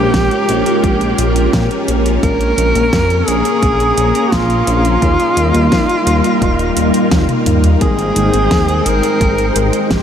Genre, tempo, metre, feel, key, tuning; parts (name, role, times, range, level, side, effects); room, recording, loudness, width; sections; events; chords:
synthwave; 86 BPM; 4/4; straight; A4 = 440 Hz
breathy alto saxophone; melody; 0.0-10.0 s; F4 to Bb4; -16 LUFS; equal; analog delay
string machine, full ensemble; sustained chords; 0.0-10.0 s; G3 to G5; -16 LUFS; left 1 dB; ensemble chorus, sidechain pumping
chorused synth bass; bass; 0.0-10.0 s; Eb1 to Bb2; -16 LUFS; equal; tube saturation, sidechain pumping
electronic kick drum; drums; 0.1-10.0 s; -18 LUFS; equal; overdrive
pop drum kit; drums; 0.1-10.0 s; hi-hat, snare drum, toms; -21 LUFS; equal; overdrive
wet huge ambient reverb, RT60 7.8 s; dreamy mix soaked in reverb; -11 LUFS; side -8 dB against mid
0.0-10.0 A section
drum fill 7.1-7.8
0.0 Bbm7; 5.0 Eb; 7.8 Abmaj7